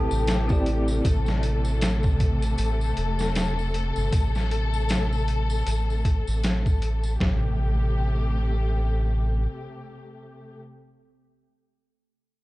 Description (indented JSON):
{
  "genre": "trip hop",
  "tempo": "78 BPM",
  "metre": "4/4",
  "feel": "swing 58% on 16ths",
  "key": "A minor",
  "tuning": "A4 = 440 Hz",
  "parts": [
    { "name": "bell-like tine electric piano", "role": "accompaniment", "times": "0.0-1.1 s", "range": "C4 to D5", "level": "-31 LUFS", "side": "equal", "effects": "tremolo, tape echo" },
    { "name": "dark studio string section", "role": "sustained chords", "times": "0.0-10.6 s", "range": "C3 to A4", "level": "-30 LUFS", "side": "left 2 dB", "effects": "none" },
    { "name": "worn celesta", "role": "arpeggios", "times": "0.0-1.1 s", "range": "G4 to A5", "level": "-34 LUFS", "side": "equal", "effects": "ping-pong delay" },
    { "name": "round analog bass", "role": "bass", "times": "0.0-9.5 s", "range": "E1 to A1", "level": "-24 LUFS", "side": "equal", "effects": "none" },
    { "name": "downlifter and impact", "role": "sound effects", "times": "0.0-1.0, 7.4-10.6 s", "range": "none", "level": "-39 LUFS", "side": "equal", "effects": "none" },
    { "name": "tambourine", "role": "percussion", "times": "0.1-7.2 s", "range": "none", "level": "-43 LUFS", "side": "equal", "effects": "none" },
    { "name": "trip hop sampler-style drum kit", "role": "drums", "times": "0.3-7.4 s", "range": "hi-hat, kick drum, snare drum", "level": "-25 LUFS", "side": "equal", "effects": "overdrive" }
  ],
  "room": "studio reverb",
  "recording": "dark, warm production, nothing above 10.6 kHz",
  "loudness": "-22 LUFS",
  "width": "side -19 dB against mid",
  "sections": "0.0-7.2 A section; 7.2-10.3 B section",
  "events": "filter sweep on analog synth bass 0.0-7.2",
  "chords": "0.0 Am7"
}